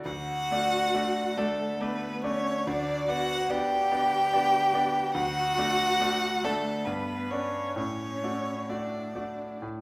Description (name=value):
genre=classical, slow romantic movement for piano trio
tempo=70 BPM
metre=3/4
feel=uneven beats, rubato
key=D major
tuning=A4 = 439 Hz
part: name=clear violin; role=melody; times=0.0-9.6 s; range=A4 to G5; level=-31 LUFS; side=equal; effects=none
part: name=bright grand piano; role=accompaniment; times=0.0-9.8 s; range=D2 to D5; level=-34 LUFS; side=equal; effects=none
part: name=rich cello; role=second line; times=0.1-9.6 s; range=A3 to G4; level=-36 LUFS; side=equal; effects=none
room=wet recital hall reverb, RT60 1.5 s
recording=recorded in a church or concert hall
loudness=-28 LUFS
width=mono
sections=0.1-9.8 A section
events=none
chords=0.1 D; 2.7 G/D; 5.2 D; 6.9 G; 7.8 D/A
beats=| 0.07 0.95 1.81 | 2.67 3.50 4.34 | 5.16 6.01 6.87 | 7.77 8.69 9.62